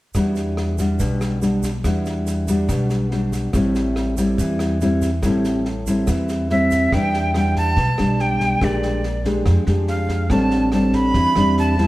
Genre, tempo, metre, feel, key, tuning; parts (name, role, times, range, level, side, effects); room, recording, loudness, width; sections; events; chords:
bossa nova; 142 BPM; 4/4; straight; E minor; A4 = 442 Hz
compact cocktail drum kit; drums; 0.1-11.8 s; kick drum, rim click, snare drum; -29 LUFS; equal
tube shaker; percussion; 0.1-6.9 s; -39 LUFS; right 6 dB
nylon-string guitar; accompaniment; 0.2-11.9 s; A2 to G4; -19 LUFS; equal
upright bass; bass; 0.2-11.9 s; A1 to E#2; -23 LUFS; equal
bright jazz flute; melody; 6.5-11.9 s; D5 to B5; -22 LUFS; right 2 dB
wet echo chamber reverb, RT60 1.5 s; heard from further back in the room; -17 LUFS; side -17 dB against mid
0.2-6.9 A section; 6.9-11.9 B section
0.2 Em9; 3.5 Am7; 6.9 Em9; 8.6 A#6; 10.3 Am11